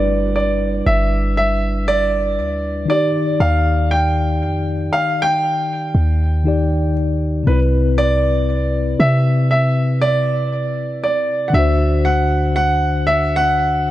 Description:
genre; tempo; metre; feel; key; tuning
contemporary R&B; 59 BPM; 4/4; swing 58% on 16ths; G major; A4 = 440 Hz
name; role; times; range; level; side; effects
warm grand piano; melody; 0.0-13.9 s; B4 to G5; -19 LUFS; right 1 dB; digital delay
mellow tine electric piano; accompaniment; 0.0-13.9 s; C3 to D5; -21 LUFS; left 3 dB; slow stereo tremolo
warm 808-style bass; bass; 0.0-13.9 s; G1 to C3; -18 LUFS; equal; none
room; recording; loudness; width
light reverb, digital ambience; dark, warm production; -15 LUFS; side -14 dB against mid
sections
0.0-13.9 A section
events
none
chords
0.0 G6; 2.9 Ebmaj7; 7.5 Cmaj7; 11.5 D7

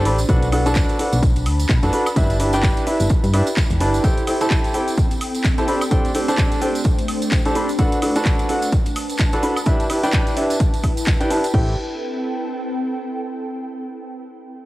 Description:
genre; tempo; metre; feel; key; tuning
piano house; 128 BPM; 4/4; swing 58% on 16ths; A dorian; A4 = 436 Hz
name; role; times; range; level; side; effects
warm grand piano; riff; 0.0-11.7 s; D4 to B5; -21 LUFS; equal; sidechain pumping, low-pass filter, cassette tape, tape echo
solid FM bass; bass; 0.0-4.0, 11.5-11.8 s; E1 to G2; -19 LUFS; equal; sidechain pumping
ethereal airy pad; texture; 0.0-13.4 s; A3 to B5; -27 LUFS; equal; ensemble chorus, built-in reverb, sidechain pumping, cassette tape
house drum kit; drums; 0.1-11.6 s; cabasa, crash cymbal, handclaps, hi-hat, woodblock; -28 LUFS; equal; studio reverb, cassette tape
tambourine; percussion; 0.2-11.5 s; none; -34 LUFS; right 4 dB; none
electronic kick drum; drums; 0.3-11.6 s; none; -19 LUFS; equal; studio reverb, cassette tape
room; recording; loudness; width
light reverb; home recording on cassette; -16 LUFS; side -17 dB against mid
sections
0.0-11.5 A section; 11.5-13.4 B section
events
none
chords
0.3 Bm7; 2.2 G6; 4.0 Am7; 5.7 D7sus4/A; 7.8 Bm7; 9.7 G6; 11.5 Am7

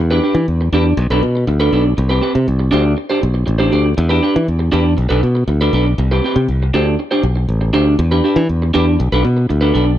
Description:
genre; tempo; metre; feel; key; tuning
disco; 120 BPM; 4/4; straight; E minor; A4 = 439 Hz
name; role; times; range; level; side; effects
electric guitar through a small old amp; accompaniment; 0.0-9.9 s; C4 to C5; -16 LUFS; right 1 dB; none
modern bright fingered electric bass; bass; 0.0-10.0 s; A1 to E3; -14 LUFS; equal; none
room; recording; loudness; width
little or no reverb; none; -12 LUFS; side -12 dB against mid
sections
0.0-10.0 A section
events
none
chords
0.0 Em7; 1.0 Bm7; 2.0 Gadd11/C; 2.7 D7sus4; 4.0 Em7; 5.0 Bm7; 6.0 Gadd11/C; 6.7 D7sus4; 8.0 Em7; 9.0 Bm7

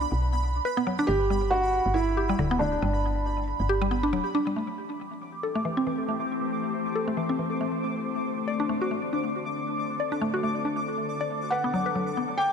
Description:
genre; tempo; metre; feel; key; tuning
IDM; 138 BPM; 4/4; swing 56% on 16ths; A dorian; A4 = 440 Hz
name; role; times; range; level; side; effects
woody FM bass; bass; 0.0-4.2 s; D1 to B1; -28 LUFS; equal; none
pulsing gated texture; texture; 0.0-12.5 s; B5 to D6; -34 LUFS; right 2 dB; chorus, built-in reverb
mallet-like synth pluck; arpeggios; 0.7-12.2 s; D3 to D5; -29 LUFS; left 1 dB; chorus, phaser, tape echo
felt-muted upright piano; melody; 1.1-3.4, 11.5-12.5 s; D4 to G5; -28 LUFS; right 1 dB; vintage 12-bit sampler grit, ping-pong delay
glassy FM pad; sustained chords; 5.2-12.5 s; D3 to C5; -31 LUFS; left 2 dB; ensemble chorus, built-in reverb
room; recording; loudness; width
moderate lush hall reverb, RT60 2.6 s; none; -25 LUFS; side -7 dB against mid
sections
0.0-4.6 A section; 4.6-12.5 B section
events
filter sweep on ambient pad 4.6-12.5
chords
0.0 Bm; 1.1 G; 4.6 Am7; 8.0 D7(no3); 11.5 Bm

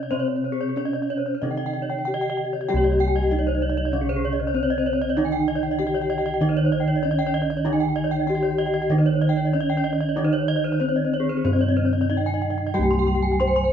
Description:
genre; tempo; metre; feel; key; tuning
gamelan; 95 BPM; 4/4; straight; C pelog; A4 = 440 Hz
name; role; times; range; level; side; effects
gamelan-type bronze metallophone; melody; 0.0-13.7 s; C4 to C5; -25 LUFS; equal; none
gamelan-type bronze metallophone; accompaniment; 0.0-13.7 s; C3 to G3-30c; -32 LUFS; left 1 dB; none
gamelan-type bronze metallophone; arpeggios; 0.0-13.6 s; Ab4-20c to C6; -28 LUFS; left 4 dB; none
gamelan-type bronze metallophone; arpeggios; 0.0-13.7 s; Ab4-20c to C6; -29 LUFS; right 8 dB; none
gamelan-type bossed gongs; bass; 0.0-13.7 s; C2 to G4-30c; -25 LUFS; equal; none
room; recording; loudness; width
moderate large studio reverb, RT60 1.0 s; band playing live in one room, nothing above 7.7 kHz; -20 LUFS; side -8 dB against mid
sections
0.0-2.7 A section; 2.7-12.7 B section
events
none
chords
none

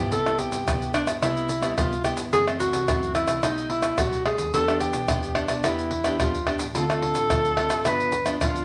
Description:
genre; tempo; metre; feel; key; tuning
samba and choro; 108 BPM; 4/4; straight; C major; A4 = 440 Hz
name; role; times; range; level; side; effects
mellow alto saxophone; melody; 0.0-8.6 s; D4 to B4; -28 LUFS; equal; none
nylon-string guitar; accompaniment; 0.0-8.6 s; F#2 to A4; -33 LUFS; equal; none
hollow-body short-scale fingered electric bass; bass; 0.0-8.6 s; F#1 to G2; -38 LUFS; equal; none
tube shaker, surdo, pandeiro and tamborim; percussion; 0.1-8.6 s; none; -28 LUFS; equal; none
room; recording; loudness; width
moderate studio reverb, RT60 0.8 s; none; -24 LUFS; mono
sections
0.1-8.6 A section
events
none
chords
0.1 Cmaj7; 2.3 F#m7b5; 3.4 B7b13; 4.5 Em7; 6.8 Dm7; 7.9 G7

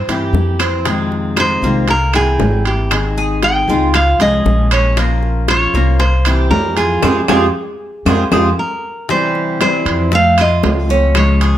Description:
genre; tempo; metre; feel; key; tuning
latin, Cuban son and guajira; 116 BPM; 4/4; straight; F minor; A4 = 438 Hz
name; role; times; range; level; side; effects
Cuban tres; arpeggios; 0.0-11.6 s; G3 to G5; -20 LUFS; right 3 dB; none
upright bass; bass; 0.0-11.6 s; Ab1 to G2; -16 LUFS; equal; none
fingerpicked steel-string acoustic guitar; accompaniment; 0.1-11.6 s; C3 to C5; -19 LUFS; left 3 dB; none
bongos; percussion; 0.1-11.6 s; none; -24 LUFS; left 7 dB; none
timbales; percussion; 0.1-11.6 s; none; -20 LUFS; right 5 dB; none
claves; percussion; 0.6-11.4 s; none; -27 LUFS; left 7 dB; none
nylon-string guitar; melody; 1.4-11.6 s; G4 to G5; -17 LUFS; equal; none
room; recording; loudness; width
light reverb; none; -12 LUFS; side -12 dB against mid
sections
0.0-9.1 A section; 9.1-11.6 B section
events
drum fill 0.6; band accent 7.0-9.1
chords
0.0 C7; 0.9 Fm7; 1.9 C7; 2.9 Abmaj7; 3.9 Db; 5.0 Bbmadd9; 6.0 C7; 7.0 Fmadd9; 9.1 C; 10.1 F

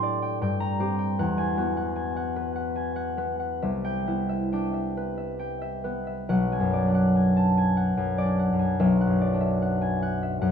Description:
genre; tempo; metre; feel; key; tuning
classical, solo harp piece; 65-80 BPM; 3/4; rubato; unclear; A4 = 441 Hz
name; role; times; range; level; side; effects
concert harp; solo; 0.0-10.5 s; B1 to C6; -23 LUFS; left 1 dB; none
room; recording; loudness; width
light reverb; minimal, uncompressed stereo recording; -23 LUFS; side -8 dB against mid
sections
0.0-6.3 A section; 6.3-10.5 B section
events
none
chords
0.4 Gmadd9; 1.2 Eadd9; 3.6 Cmaj7; 6.3 Bm6; 8.8 Dadd9/B

